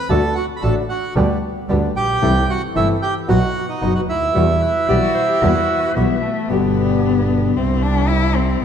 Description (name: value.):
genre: tango.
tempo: 113 BPM.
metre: 4/4.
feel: rubato.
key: E minor.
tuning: A4 = 439 Hz.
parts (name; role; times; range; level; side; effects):
bandoneon; melody; 0.0-5.9 s; D#4 to B5; -20 LUFS; right 3 dB; none.
nylon-string guitar; accompaniment; 0.1-8.6 s; B2 to G4; -21 LUFS; left 3 dB; none.
bandoneon; stabs; 0.1-8.6 s; G3 to A4; -28 LUFS; right 2 dB; none.
rich double bass; bass; 0.1-8.6 s; F#1 to E2; -20 LUFS; right 2 dB; none.
bright clarinet; second line; 4.6-6.5 s; B4 to E5; -28 LUFS; left 5 dB; none.
warm cello; second line; 4.9-8.6 s; A3 to G4; -20 LUFS; left 8 dB; none.
room: moderate concert hall reverb, RT60 2.1 s.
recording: none.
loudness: -15 LUFS.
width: side -8 dB against mid.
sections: 0.0-6.5 A section; 6.5-8.6 B section.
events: cello solo 6.5-8.6.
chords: 0.1 D; 1.2 G/D; 2.2 C6; 3.3 B; 4.3 Emadd9; 6.5 G; 7.6 C.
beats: | 0.10 0.63 1.16 1.69 | 2.22 2.75 3.28 3.82 | 4.35 4.88 5.42 5.95 | 6.49 7.03 7.56 8.09 | 8.62.